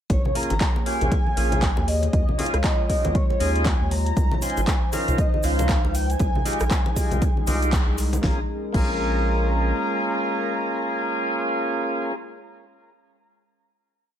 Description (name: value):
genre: deep house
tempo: 118 BPM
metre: 4/4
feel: swing 59% on 16ths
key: Bb dorian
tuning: A4 = 435 Hz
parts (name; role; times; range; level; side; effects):
- breathy flute-like synth lead; melody; 0.1-12.1 s; Db5 to Bb5; -30 LUFS; equal; ensemble chorus, tape echo
- warbly tape-like pad; sustained chords; 0.6-11.6 s; F3 to Db5; -32 LUFS; equal; chorus, built-in reverb, sidechain pumping
- round analog bass; bass; 0.1-9.7 s; Ab1 to Eb2; -24 LUFS; equal; sidechain pumping
- deep house drum kit; drums; 0.1-8.9 s; crash cymbal, handclaps, hi-hat, rim click, snare drum; -31 LUFS; equal; overdrive, small room reverb
- electronic kick drum; drums; 0.1-8.9 s; none; -23 LUFS; equal; overdrive, small room reverb
- congas; percussion; 0.1-8.2 s; none; -32 LUFS; left 2 dB; none
- tonewheel organ; stabs; 0.3-12.2 s; Ab3 to C5; -27 LUFS; equal; overdrive, slow rotary speaker, sidechain pumping
- tube shaker; percussion; 4.2-8.2 s; none; -39 LUFS; right 4 dB; none
room: little or no reverb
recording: none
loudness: -20 LUFS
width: side -10 dB against mid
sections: 0.1-8.2 drop; 8.2-12.3 final chord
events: drop 0.1-8.2; band accent 7.7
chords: 0.1 Bbm7; 1.9 Eb9sus4; 4.2 Dbmaj9; 6.2 Fm9; 8.2 Bbm7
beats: | 0.10 0.61 1.12 1.62 | 2.13 2.64 3.15 3.66 | 4.17 4.68 5.18 5.69 | 6.20 6.71 7.22 7.73 | 8.23 8.74 9.25 9.76 | 10.27 10.78 11.29 11.79